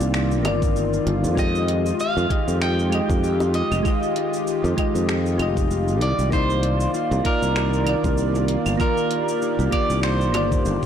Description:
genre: sunset chillout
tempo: 97 BPM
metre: 4/4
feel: swing 56% on 16ths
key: F dorian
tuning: A4 = 441 Hz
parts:
  - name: soft electric-piano-like synth keys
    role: accompaniment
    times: 0.0-10.9 s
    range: Eb3 to Eb5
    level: -26 LUFS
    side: moving between left 5 dB and right 7 dB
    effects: chorus, auto-pan, ping-pong delay
  - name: airy breathy pad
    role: sustained chords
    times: 0.0-10.9 s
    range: Eb3 to D5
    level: -29 LUFS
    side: left 1 dB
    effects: chorus
  - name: concert harp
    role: arpeggios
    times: 0.0-10.9 s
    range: D4 to Bb4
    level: -29 LUFS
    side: left 4 dB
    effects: ping-pong delay
  - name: sustaining fretless electric bass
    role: bass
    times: 0.0-10.8 s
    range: F1 to F2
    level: -22 LUFS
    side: equal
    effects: tube saturation
  - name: smooth R&B drum kit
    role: drums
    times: 0.0-10.9 s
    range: claves, finger snaps, hi-hat, shaker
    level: -32 LUFS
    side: right 1 dB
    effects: overdrive, soft clipping on snare
  - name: bongos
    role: percussion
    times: 0.5-10.5 s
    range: none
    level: -32 LUFS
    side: left 1 dB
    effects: none
  - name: electronic kick drum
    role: drums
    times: 0.6-10.9 s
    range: none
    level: -24 LUFS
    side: equal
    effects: none
  - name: electric guitar at the edge of break-up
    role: melody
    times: 1.4-10.9 s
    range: Bb4 to G5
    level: -26 LUFS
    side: right 1 dB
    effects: phaser, tape echo
room: light reverb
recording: blown-out, overdriven recording, overdrive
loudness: -19 LUFS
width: side -9 dB against mid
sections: 0.0-10.9 A section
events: none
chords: 0.0 Cm11; 1.4 Fm9; 6.3 Cm11

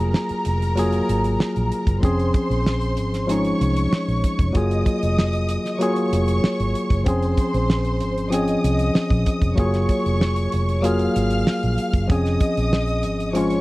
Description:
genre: lush 1970s-style soul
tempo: 95 BPM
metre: 4/4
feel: straight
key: Db major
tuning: A4 = 441 Hz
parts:
  - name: warm studio string section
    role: second line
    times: 0.0-13.6 s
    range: Bb4 to F6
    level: -28 LUFS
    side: equal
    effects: none
  - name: tine electric piano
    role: accompaniment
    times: 0.0-13.6 s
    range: F3 to Ab4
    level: -22 LUFS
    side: left 1 dB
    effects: none
  - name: vintage muted fingered electric bass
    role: bass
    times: 0.0-13.6 s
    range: F1 to C2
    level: -23 LUFS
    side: equal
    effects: none
  - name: damped 70s drum kit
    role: drums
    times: 0.1-13.6 s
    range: hi-hat, kick drum, snare drum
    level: -21 LUFS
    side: equal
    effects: none
room: small room ambience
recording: dry, close 1970s-style studio recording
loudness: -18 LUFS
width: side -19 dB against mid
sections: 0.0-13.6 A section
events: none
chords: 0.0 Gbmaj9; 2.0 Dbmaj7/F; 4.5 Gbmaj9; 7.1 Dbmaj7/F; 9.6 Gbmaj9; 12.1 Dbmaj7/F

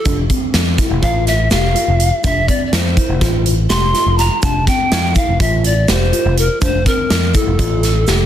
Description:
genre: progressive instrumental, band music in an uneven meter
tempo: 247 BPM (eighths)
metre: 9/8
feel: straight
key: F major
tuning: A4 = 436 Hz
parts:
  - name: breathy mellow pan flute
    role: melody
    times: 0.0-8.3 s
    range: A4 to C6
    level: -19 LUFS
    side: equal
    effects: none
  - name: mellow tine electric piano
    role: arpeggios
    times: 0.1-8.2 s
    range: C4 to G4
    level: -22 LUFS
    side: left 1 dB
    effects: medium stereo tremolo, ping-pong delay
  - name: picked electric bass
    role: bass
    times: 0.1-8.3 s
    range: F1 to F2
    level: -16 LUFS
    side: equal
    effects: none
  - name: big rock drum kit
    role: drums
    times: 0.1-8.2 s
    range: hi-hat, kick drum, snare drum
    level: -17 LUFS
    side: equal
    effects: none
  - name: tube shaker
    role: percussion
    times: 0.1-8.3 s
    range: none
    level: -32 LUFS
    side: right 10 dB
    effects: none
room: light reverb, studio reverb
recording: dense, heavily limited modern master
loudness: -12 LUFS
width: side -10 dB against mid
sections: 0.0-8.3 A section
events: pan flute solo 0.0-8.3; drum fill 8.1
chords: 0.0 F

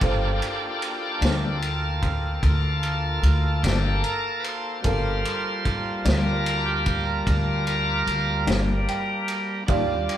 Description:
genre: slow blues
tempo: 50 BPM (dotted quarters)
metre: 12/8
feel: straight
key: G minor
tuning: A4 = 439 Hz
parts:
  - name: dark upright piano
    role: accompaniment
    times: 0.0-10.2 s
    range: F4 to G5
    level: -32 LUFS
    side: right 4 dB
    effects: none
  - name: bright tonewheel organ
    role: sustained chords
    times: 0.0-10.2 s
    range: G3 to C5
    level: -26 LUFS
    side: equal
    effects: slow rotary speaker, overdrive
  - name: warm horn section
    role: sustained chords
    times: 0.0-10.2 s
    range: D5 to A5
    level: -37 LUFS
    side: left 2 dB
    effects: none
  - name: upright bass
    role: bass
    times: 0.0-10.1 s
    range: G1 to Eb2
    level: -24 LUFS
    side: equal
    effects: none
  - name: vintage drum kit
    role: drums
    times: 0.0-10.2 s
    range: kick drum, ride cymbal, snare drum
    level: -29 LUFS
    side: equal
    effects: none
  - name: clean electric guitar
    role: accompaniment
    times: 1.2-9.9 s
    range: G2 to D4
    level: -29 LUFS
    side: left 4 dB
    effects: tremolo
room: light reverb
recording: band playing live in one room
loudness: -21 LUFS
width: side -11 dB against mid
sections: 0.0-10.2 A section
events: tonewheel organ solo 0.0-10.2; upright piano fill 8.5-9.7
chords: 0.0 Gm7

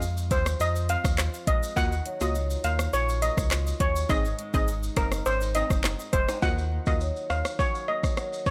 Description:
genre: dancehall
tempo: 103 BPM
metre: 4/4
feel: straight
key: Eb dorian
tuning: A4 = 439 Hz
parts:
  - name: punchy chord stab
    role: accompaniment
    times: 0.0-7.0 s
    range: Bb3 to Eb5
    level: -35 LUFS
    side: equal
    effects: chorus
  - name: flamenco guitar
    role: arpeggios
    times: 0.0-8.5 s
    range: F2 to F4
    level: -39 LUFS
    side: equal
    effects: none
  - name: sub bass with octave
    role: bass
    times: 0.0-7.4 s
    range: F1 to F2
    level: -31 LUFS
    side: equal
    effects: none
  - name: afro-pop drum kit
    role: drums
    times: 0.0-8.5 s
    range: handclaps, hi-hat, kick drum, rim click, shaker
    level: -30 LUFS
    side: equal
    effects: none
  - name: maracas and timbales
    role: percussion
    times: 0.0-8.5 s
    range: none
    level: -44 LUFS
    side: equal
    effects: none
  - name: steel pan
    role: melody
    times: 0.3-8.5 s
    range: Bb4 to Gb5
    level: -31 LUFS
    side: equal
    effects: delay
room: little or no reverb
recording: none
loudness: -26 LUFS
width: mono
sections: 0.0-6.4 A section; 6.4-8.5 B section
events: hi-hats muted 6.4-8.5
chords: 0.0 Fm7; 1.8 Ebmadd9; 4.1 Ab; 6.4 Ebmadd9

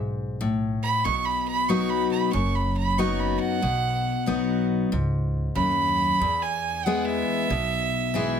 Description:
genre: honky-tonk and classic country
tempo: 93 BPM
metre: 4/4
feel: swing 62% on 8ths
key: E major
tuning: A4 = 440 Hz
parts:
  - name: picked steel-string acoustic guitar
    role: accompaniment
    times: 0.0-8.4 s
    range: E2 to F#4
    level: -25 LUFS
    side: left 4 dB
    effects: none
  - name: upright bass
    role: bass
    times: 0.0-8.4 s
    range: F#1 to E2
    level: -30 LUFS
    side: right 1 dB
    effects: none
  - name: clear fiddle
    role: second line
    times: 0.8-8.4 s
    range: E5 to C#6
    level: -25 LUFS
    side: right 4 dB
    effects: none
room: moderate studio ambience, RT60 0.5 s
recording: none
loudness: -22 LUFS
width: side -8 dB against mid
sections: 0.0-8.4 A section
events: fiddle solo 0.0-8.4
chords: 0.0 E (rootless); 1.0 B; 6.2 E

